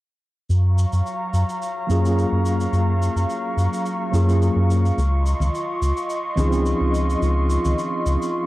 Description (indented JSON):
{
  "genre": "sunset chillout",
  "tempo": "107 BPM",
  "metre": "4/4",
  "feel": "swing 54% on 16ths",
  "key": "unclear",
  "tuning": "A4 = 437 Hz",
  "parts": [
    { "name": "airy breathy pad", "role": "sustained chords", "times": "0.6-8.5 s", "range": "Gb3 to Db6", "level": "-25 LUFS", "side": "equal", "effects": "chorus" },
    { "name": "round analog bass", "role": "bass", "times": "0.5-8.2 s", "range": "Db2 to Gb2", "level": "-19 LUFS", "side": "equal", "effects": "tube saturation" },
    { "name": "cabasa", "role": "drums", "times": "0.5-8.3 s", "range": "none", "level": "-41 LUFS", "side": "left 1 dB", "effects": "none" },
    { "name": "mellow tine electric piano", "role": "accompaniment", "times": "1.9-8.5 s", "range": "F3 to Ab4", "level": "-24 LUFS", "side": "equal", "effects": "medium stereo tremolo, auto-pan, low-pass filter" },
    { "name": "congas", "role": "percussion", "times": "5.4-7.8 s", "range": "none", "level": "-28 LUFS", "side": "left 1 dB", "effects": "none" }
  ],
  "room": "light reverb",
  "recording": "worn, warbling old tape, cassette tape, warbly pitch drift",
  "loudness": "-18 LUFS",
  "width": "side -17 dB against mid",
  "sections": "0.5-8.5 A section",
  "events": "filter sweep on tine electric piano 0.5-8.5",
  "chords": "0.5 Gbmaj7; 5.0 Dbmaj9"
}